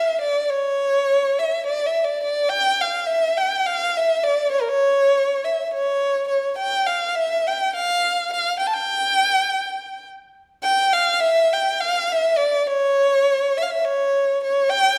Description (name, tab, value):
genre	balkan folk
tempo	free time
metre	none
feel	none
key	unclear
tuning	A4 = 440 Hz
part	dark violin	solo	0.0-15.0 s	Bb4 to A5	-20 LUFS	equal	none
room	wet recital hall reverb, RT60 1.5 s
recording	none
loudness	-20 LUFS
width	mono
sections	0.0-10.6 A section; 10.6-15.0 A section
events	none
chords	none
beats	free time